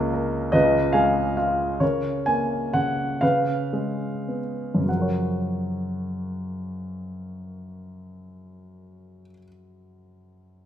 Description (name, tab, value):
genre	classical, lyrical solo piano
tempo	32-51 BPM (dotted quarters)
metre	6/8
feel	rubato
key	F# major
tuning	A4 = 441 Hz
part	warm grand piano	solo	0.0-10.7 s	C#2 to G#5	-22 LUFS	equal	none
room	moderate recital hall reverb, RT60 1.4 s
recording	recorded in a church or concert hall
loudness	-22 LUFS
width	side -10 dB against mid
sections	0.0-1.8 A section; 1.8-4.9 B section; 4.9-8.5 C section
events	slowing down 0.0-4.9; grand piano fill 0.5-1.8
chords	0.0 F#/C#; 0.5 C#7; 1.8 F#add9/C#; 3.2 C#7; 4.9 F#maj7